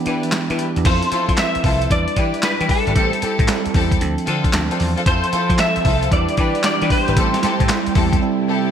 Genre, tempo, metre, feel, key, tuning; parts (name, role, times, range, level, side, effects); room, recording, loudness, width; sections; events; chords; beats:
R&B, new jack swing; 114 BPM; 4/4; swing 66% on 16ths; A4 = 439 Hz
electric guitar at the edge of break-up; melody; 0.0-7.9 s; A4 to E5; -21 LUFS; equal; ensemble chorus
bell-like tine electric piano; accompaniment; 0.0-8.7 s; E3 to B4; -23 LUFS; right 6 dB; phaser
rich symphonic string section; stabs; 0.1-8.7 s; C4 to B4; -24 LUFS; left 4 dB
vintage slap bass; bass; 0.1-8.2 s; G#1 to F3; -22 LUFS; equal
dusty soul sampler-style drum kit; drums; 0.1-8.2 s; crash cymbal, handclaps, hi-hat, kick drum, snare drum; -20 LUFS; equal; gated reverb
warm studio string section; sustained chords; 5.1-8.7 s; C3 to A4; -27 LUFS; left 3 dB
moderate lush hall reverb, RT60 1.9 s; bright 1980s-style digital production; -15 LUFS; side -8 dB against mid
0.8-8.7 A section
break 0.0-0.8, 8.2-8.7
0.0 Em7; 0.8 Fmaj7; 1.9 Em7; 3.0 Am7; 4.0 Dm7; 5.1 Fmaj7; 6.1 Em7; 7.2 Am7
0.32 | 0.85 1.38 1.90 2.43 | 2.96 3.48 4.01 4.54 | 5.06 5.59 6.11 6.64 | 7.17 7.69 8.22